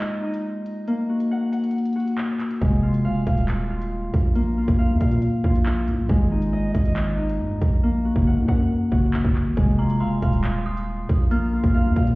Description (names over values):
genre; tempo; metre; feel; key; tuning
hip hop, drill; 138 BPM; 4/4; half-time; F phrygian; A4 = 438 Hz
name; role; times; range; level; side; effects
Celtic harp; arpeggios; 0.0-12.2 s; Ab3 to Gb5; -23 LUFS; left 1 dB; low-pass filter, digital delay
drill drum kit; drums; 0.0-12.2 s; handclaps, hi-hat, kick drum; -22 LUFS; equal; none
growling 808-style bass; bass; 2.6-12.2 s; Eb1 to Bb2; -23 LUFS; equal; none
dark detuned synth bell; second line; 9.8-12.2 s; Bb5 to F6; -34 LUFS; right 2 dB; chorus, digital delay
room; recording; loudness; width
digital ambience; heard muffled through a wall, stone room reverb, EQ; -19 LUFS; side -21 dB against mid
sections
0.0-12.2 A section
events
break 0.0-2.6; hi-hats muted 7.8-9.6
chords
0.0 Ab5; 0.9 Gb; 2.6 Fm; 4.4 Bb5; 6.1 Ab5; 7.8 Gb; 9.6 Fm; 11.3 Bb5